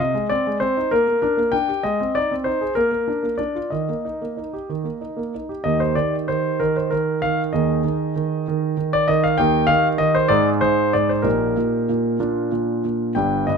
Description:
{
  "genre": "classical-period piano sonatina",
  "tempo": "64 BPM (dotted quarters)",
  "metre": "6/8",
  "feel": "straight",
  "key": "Eb major",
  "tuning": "A4 = 440 Hz",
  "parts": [
    { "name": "warm concert grand piano", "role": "solo", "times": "0.0-13.6 s", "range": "G1 to G5", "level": "-18 LUFS", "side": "equal", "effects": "none" }
  ],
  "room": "light reverb",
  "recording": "close, detailed microphones",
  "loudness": "-18 LUFS",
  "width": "side -5 dB against mid",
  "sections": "0.0-5.6 A section; 5.6-13.6 A section",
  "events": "none",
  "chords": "0.0 Ab/C; 0.9 Gm/Bb; 1.8 Ab; 2.8 Bb; 3.7 Eb; 7.5 Ab5/Eb; 9.4 Eb; 10.3 Ab5; 11.3 Eb/Bb; 12.2 Bb"
}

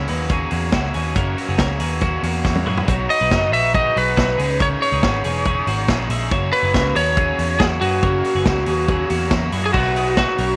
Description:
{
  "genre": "jangly indie pop",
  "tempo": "140 BPM",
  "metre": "4/4",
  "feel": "straight",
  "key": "unclear",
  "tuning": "A4 = 445 Hz",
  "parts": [
    { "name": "overdriven semi-hollow guitar", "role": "accompaniment", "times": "0.0-10.6 s", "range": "F#2 to G#4", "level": "-28 LUFS", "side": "equal", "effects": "none" },
    { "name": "twelve-string electric guitar", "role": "arpeggios", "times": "0.0-10.6 s", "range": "G#3 to C#5", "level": "-30 LUFS", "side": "equal", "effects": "none" },
    { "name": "vintage muted picked electric bass", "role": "bass", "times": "0.0-10.6 s", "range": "E1 to F#2", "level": "-25 LUFS", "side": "equal", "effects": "none" },
    { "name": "vintage drum kit", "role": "drums", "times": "0.1-10.5 s", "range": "crash cymbal, hi-hat, kick drum, snare drum, toms", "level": "-25 LUFS", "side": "equal", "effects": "none" },
    { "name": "lightly driven lead guitar", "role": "melody", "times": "3.1-10.6 s", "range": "F#4 to E5", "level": "-22 LUFS", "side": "equal", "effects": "none" }
  ],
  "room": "moderate echo chamber reverb, RT60 1.8 s, studio reverb",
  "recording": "none",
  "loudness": "-19 LUFS",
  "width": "mono",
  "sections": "0.0-9.7 A section",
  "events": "drum fill 2.4-2.9",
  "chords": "0.0 F#; 2.9 B; 4.4 C#madd9; 6.3 F#; 9.7 B"
}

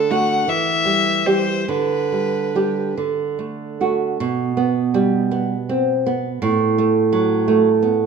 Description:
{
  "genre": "romantic duo for violin and classical guitar",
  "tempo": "46-58 BPM (dotted quarters)",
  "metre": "6/8",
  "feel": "rubato",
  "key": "G major",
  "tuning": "A4 = 440 Hz",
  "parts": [
    { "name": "dark violin", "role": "melody", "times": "0.0-3.0 s", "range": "A4 to F#5", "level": "-20 LUFS", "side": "left 4 dB", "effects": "none" },
    { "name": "nylon-string guitar", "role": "accompaniment", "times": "0.0-8.1 s", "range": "A2 to G4", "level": "-17 LUFS", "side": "right 4 dB", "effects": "none" }
  ],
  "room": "moderate recital hall reverb, RT60 1.6 s",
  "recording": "minimal, uncompressed stereo recording",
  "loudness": "-17 LUFS",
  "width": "side -6 dB against mid",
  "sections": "0.0-4.2 A section; 4.2-8.1 B section",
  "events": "none",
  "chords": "0.5 Em; 1.7 G/D; 3.0 D; 4.2 G/B; 6.4 F#madd11/A"
}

